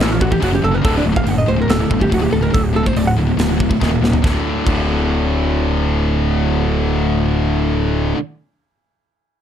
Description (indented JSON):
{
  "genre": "heavy metal",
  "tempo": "142 BPM",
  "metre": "4/4",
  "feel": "straight",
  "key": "D major",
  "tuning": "A4 = 440 Hz",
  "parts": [
    { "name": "hollow-body jazz guitar", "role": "melody", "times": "0.0-3.1 s", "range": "D4 to F#5", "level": "-21 LUFS", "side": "right 3 dB", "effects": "none" },
    { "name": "heavy high-gain guitar", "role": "riff", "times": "0.0-8.2 s", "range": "D2 to A3", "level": "-20 LUFS", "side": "left 8 dB", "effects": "distortion" },
    { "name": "heavy high-gain guitar", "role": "riff", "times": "0.0-8.2 s", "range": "D2 to A3", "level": "-22 LUFS", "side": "right 11 dB", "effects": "distortion" },
    { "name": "fuzz picked electric bass", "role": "bass", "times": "0.0-8.1 s", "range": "D1 to A1", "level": "-19 LUFS", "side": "equal", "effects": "overdrive" },
    { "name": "tight metal drum kit", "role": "drums", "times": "0.0-4.8 s", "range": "crash cymbal, hi-hat, kick drum, snare drum, toms", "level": "-21 LUFS", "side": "equal", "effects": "none" }
  ],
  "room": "light reverb",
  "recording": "dark, warm production",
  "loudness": "-14 LUFS",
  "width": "side -9 dB against mid",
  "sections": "0.0-4.2 A section; 4.2-7.6 B section",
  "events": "hollow-body jazz guitar solo 0.0-4.2; drum fill 3.8-4.2",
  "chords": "0.0 A5; 0.4 F#5; 0.8 D5; 3.8 Eb5; 4.2 D5",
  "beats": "0.42 | 0.84 1.26 1.69 2.11 | 2.53 2.96 3.38 3.80 | 4.23 4.65 5.07 5.50 | 5.92 6.34 6.77 7.19"
}